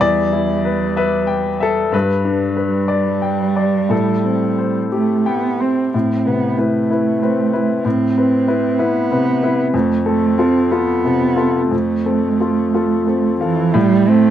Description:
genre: neoclassical piano and strings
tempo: 58-64 BPM (dotted quarters)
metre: 6/8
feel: rubato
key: A minor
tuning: A4 = 439 Hz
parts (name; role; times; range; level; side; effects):
- muted cello; second line; 0.0-14.3 s; E3 to C4; -18 LUFS; right 6 dB; none
- clear baby grand piano; accompaniment; 0.0-14.3 s; E2 to G5; -17 LUFS; left 4 dB; none
room: light reverb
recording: dry, close 1970s-style studio recording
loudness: -14 LUFS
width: side -10 dB against mid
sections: 0.0-5.9 A section; 5.9-13.8 B section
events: none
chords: 0.0 Em; 1.9 G; 3.9 Am7; 5.9 Amadd9; 9.7 F; 13.8 Am

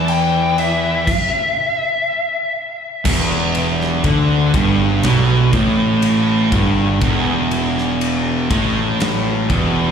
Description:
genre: stoner and doom metal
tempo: 60 BPM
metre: 4/4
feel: straight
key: E minor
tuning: A4 = 442 Hz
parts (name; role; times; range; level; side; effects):
- fuzz lead guitar; melody; 0.0-2.5 s; E5 to G5; -19 LUFS; left 3 dB; distortion, slapback echo, tape echo
- distorted electric guitar; riff; 0.0-9.9 s; E2 to E3; -23 LUFS; left 1 dB; distortion, slapback echo
- thick fuzz guitar; riff; 0.0-9.9 s; E2 to E3; -21 LUFS; left 8 dB; distortion, slapback echo
- thick fuzz guitar; riff; 0.0-9.9 s; E2 to E3; -19 LUFS; right 7 dB; distortion
- fuzz picked electric bass; bass; 0.0-9.9 s; E1 to E2; -22 LUFS; equal; overdrive
- big rock drum kit; drums; 0.1-9.7 s; crash cymbal, kick drum, ride cymbal, snare drum; -22 LUFS; equal; none
room: studio reverb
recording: live gig heard through the venue's PA, club reverb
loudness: -14 LUFS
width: side -7 dB against mid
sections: 0.0-3.1 A section; 3.1-9.9 B section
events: lead electric guitar solo 0.0-3.1; stop 1.1-3.1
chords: 0.0 N.C.; 3.1 Em

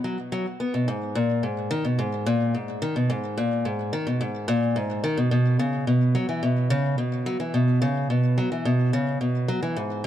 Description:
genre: folktronica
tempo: 108 BPM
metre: 4/4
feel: straight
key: unclear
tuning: A4 = 440 Hz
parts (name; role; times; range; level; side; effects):
- picked acoustic archtop guitar; solo; 0.0-10.1 s; G#2 to B3; -22 LUFS; equal; digital delay
room: moderate echo chamber reverb, RT60 1.7 s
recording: dark, warm production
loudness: -22 LUFS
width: side -11 dB against mid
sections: 0.9-10.1 A section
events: none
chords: none

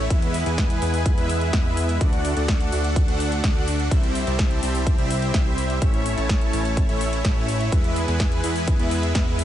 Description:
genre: EDM, festival progressive house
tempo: 126 BPM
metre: 4/4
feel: straight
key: unclear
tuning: A4 = 440 Hz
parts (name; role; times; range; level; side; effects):
- supersaw pad; sustained chords; 0.0-9.4 s; A3 to F#5; -30 LUFS; equal; sidechain pumping
- supersaw chords; riff; 0.0-9.4 s; G3 to A5; -26 LUFS; equal; sidechain pumping, digital delay
- fat analog bass; bass; 0.0-9.4 s; A1 to E2; -25 LUFS; equal; sidechain pumping
- big-room dance drum kit; drums; 0.1-9.4 s; hi-hat, snare drum; -30 LUFS; left 1 dB; small room ambience
- electronic kick drum; drums; 0.1-9.2 s; none; -21 LUFS; equal; small room ambience
room: little or no reverb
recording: nothing above 10.4 kHz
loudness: -19 LUFS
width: side -11 dB against mid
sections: 0.0-9.4 A section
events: none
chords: 0.1 E; 2.0 D; 3.9 C; 5.8 A; 7.7 E

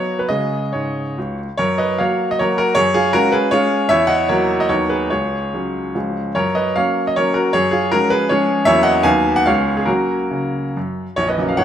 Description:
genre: classical, romantic triple-time dance for piano with dotted rhythms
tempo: 129-167 BPM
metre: 3/4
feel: rubato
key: F# major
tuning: A4 = 441 Hz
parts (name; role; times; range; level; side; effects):
- clear baby grand piano; solo; 0.0-11.6 s; A#0 to G#5; -15 LUFS; equal; none
room: wet large studio reverb, RT60 1.3 s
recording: minimal, uncompressed stereo recording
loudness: -15 LUFS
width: side -9 dB against mid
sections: 0.0-1.6 A section; 1.6-11.2 B section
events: none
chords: 0.3 C#5; 1.6 F#; 2.8 C#/F#; 3.9 F#7/E; 4.7 B/D#; 5.1 C#sus4; 5.9 C#; 6.3 F#; 7.5 C#/F#; 8.7 F#7/E; 9.1 B/D#; 9.5 C#7; 9.9 F#

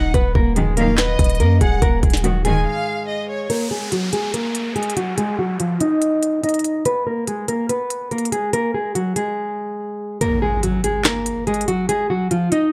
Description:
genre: hip hop, trap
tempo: 143 BPM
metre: 4/4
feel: half-time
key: unclear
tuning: A4 = 439 Hz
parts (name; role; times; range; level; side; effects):
- nylon-string guitar; melody; 0.0-12.7 s; F3 to Eb5; -22 LUFS; equal; low-pass filter
- warm studio violin section; second line; 0.0-3.5 s; Db5 to Ab5; -30 LUFS; equal; delay
- hard-hitting 808-style bass; bass; 0.0-2.7 s; Eb1 to F#2; -21 LUFS; equal; none
- trap drum kit; drums; 0.1-12.6 s; handclaps, hi-hat, kick drum, snare drum; -23 LUFS; equal; none
- dark symphonic string section; stabs; 0.6-2.6 s; B1 to D#3; -26 LUFS; equal; none
- downlifter and impact; sound effects; 3.5-6.9, 10.2-11.9 s; none; -31 LUFS; equal; none
room: small room ambience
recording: none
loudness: -20 LUFS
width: mono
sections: 0.0-3.5 A section; 3.5-10.2 B section; 10.2-12.7 C section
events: break 2.7-3.5, 9.4-10.2; filter sweep on nylon-string guitar 3.5-10.2; kick muted 10.2-12.7; impact 10.2-11.9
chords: 0.1 B/D#; 1.8 Ebmadd9; 3.5 Gbadd9; 5.2 Ab5; 6.9 Abmadd9; 8.5 Gbadd9; 11.9 Ab5

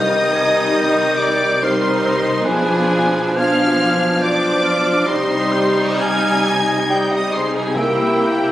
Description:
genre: classical, slow romantic movement for symphony orchestra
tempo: 56-72 BPM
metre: 3/4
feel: rubato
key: C minor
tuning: A4 = 441 Hz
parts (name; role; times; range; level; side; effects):
- warm studio violin section; melody; 0.0-8.5 s; G5 to Ab6; -23 LUFS; equal; none
- dark clarinet; second line; 0.0-8.5 s; D4 to E4; -28 LUFS; equal; none
- mellow silver concert flute; second line; 0.0-8.5 s; G4 to Ab5; -23 LUFS; left 1 dB; none
- warm oboe; second line; 0.0-8.5 s; B4 to Ab5; -23 LUFS; equal; none
- warm studio violin section; second line; 0.0-8.5 s; G4 to Ab5; -25 LUFS; left 1 dB; none
- warm bassoon; accompaniment; 0.0-8.5 s; Eb3 to Bb3; -22 LUFS; right 1 dB; none
- warm studio viola section; accompaniment; 0.0-8.5 s; F3 to E4; -23 LUFS; right 1 dB; none
- mellow French horn section; sustained chords; 0.0-8.5 s; F3 to E4; -23 LUFS; left 2 dB; none
- dark studio cello section; bass; 0.0-8.5 s; B2 to C3; -28 LUFS; right 1 dB; none
- warm studio double bass section; bass; 0.0-8.5 s; B1 to C2; -32 LUFS; right 2 dB; none
- timpani; percussion; 0.0-1.1, 7.7-8.5 s; C3; -33 LUFS; left 1 dB; none
room: moderate recital hall reverb, RT60 1.3 s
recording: recorded on a phone in the room, studio reverb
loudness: -14 LUFS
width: side -14 dB against mid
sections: 0.0-8.5 A section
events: none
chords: 0.0 Cm; 2.5 Bdim7; 5.1 Cm; 7.8 C7

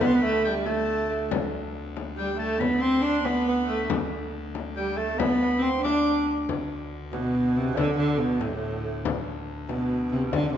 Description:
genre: medieval dance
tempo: 93 BPM (dotted quarters)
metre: 6/8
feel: straight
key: unclear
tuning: A4 = 440 Hz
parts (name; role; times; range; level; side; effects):
- warm viola da gamba; melody; 0.0-10.6 s; G2 to D4; -25 LUFS; equal; none
- bright shawm; second line; 0.0-6.3 s; G5 to D6; -32 LUFS; left 2 dB; none
- mellow tenor saxophone; second line; 0.0-10.6 s; A2 to D4; -31 LUFS; right 6 dB; none
- pipe organ, full organ; drone; 0.0-10.6 s; D2; -36 LUFS; left 2 dB; none
- frame drum; percussion; 0.0-10.5 s; none; -31 LUFS; left 6 dB; none
room: moderate scoring stage reverb, RT60 1.9 s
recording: nothing above 7.8 kHz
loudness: -23 LUFS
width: side -9 dB against mid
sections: 0.0-6.5 A section; 6.5-10.6 B section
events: none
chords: none

